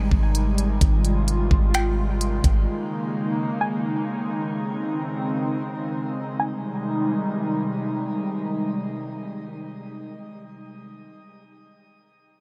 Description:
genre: hip hop, atmospheric cloud-rap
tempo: 129 BPM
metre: 4/4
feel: half-time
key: Ab major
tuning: A4 = 440 Hz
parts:
  - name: string-like resonator pluck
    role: melody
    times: 0.0-7.8 s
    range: G5 to Ab5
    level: -35 LUFS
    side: equal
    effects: chorus, low-pass filter, tape echo
  - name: airy breathy pad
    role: sustained chords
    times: 0.0-10.9 s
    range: C3 to F4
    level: -28 LUFS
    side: equal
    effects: chorus, sidechain pumping, low-pass filter
  - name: soft 808-style bass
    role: bass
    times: 0.0-2.7 s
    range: Ab1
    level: -24 LUFS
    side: equal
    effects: none
  - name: trap drum kit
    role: drums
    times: 0.1-2.5 s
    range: finger snaps, hi-hat, kick drum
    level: -24 LUFS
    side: equal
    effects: none
room: light reverb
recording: none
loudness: -24 LUFS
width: mono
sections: 0.0-6.4 A section; 6.4-10.1 B section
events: none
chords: 0.0 Abmaj7; 2.7 Eb7sus4; 6.4 Abmaj7

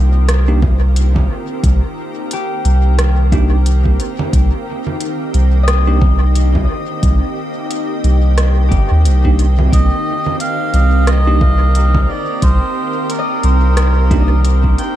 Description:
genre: ambient dub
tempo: 89 BPM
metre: 4/4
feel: swing 58% on 16ths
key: C minor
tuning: A4 = 436 Hz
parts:
  - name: soft additive organ-like pad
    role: sustained chords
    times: 0.0-15.0 s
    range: Eb3 to Eb5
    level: -22 LUFS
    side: equal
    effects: ensemble chorus, built-in reverb
  - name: soft dub sub bass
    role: bass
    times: 0.0-14.8 s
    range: G1 to Eb2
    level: -11 LUFS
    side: equal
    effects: tube saturation
  - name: organic electronic drum kit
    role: drums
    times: 0.3-14.9 s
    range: congas, hi-hat, rim click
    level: -24 LUFS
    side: right 2 dB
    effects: dub echo
  - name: bell-like tine electric piano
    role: stabs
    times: 0.5-14.3 s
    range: Bb3 to G4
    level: -24 LUFS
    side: right 3 dB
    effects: fast stereo tremolo, dub echo
  - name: electronic kick drum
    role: drums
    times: 0.6-14.8 s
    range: none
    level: -17 LUFS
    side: equal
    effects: none
  - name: concert harp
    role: arpeggios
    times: 2.3-15.0 s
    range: G4 to Eb5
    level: -27 LUFS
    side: left 5 dB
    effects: analog delay
  - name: melodica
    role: melody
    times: 9.7-15.0 s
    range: Bb4 to G5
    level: -20 LUFS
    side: right 2 dB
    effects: analog delay
room: little or no reverb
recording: echo-heavy mix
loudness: -11 LUFS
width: side -13 dB against mid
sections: 0.0-15.0 A section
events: none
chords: 0.0 Cm7

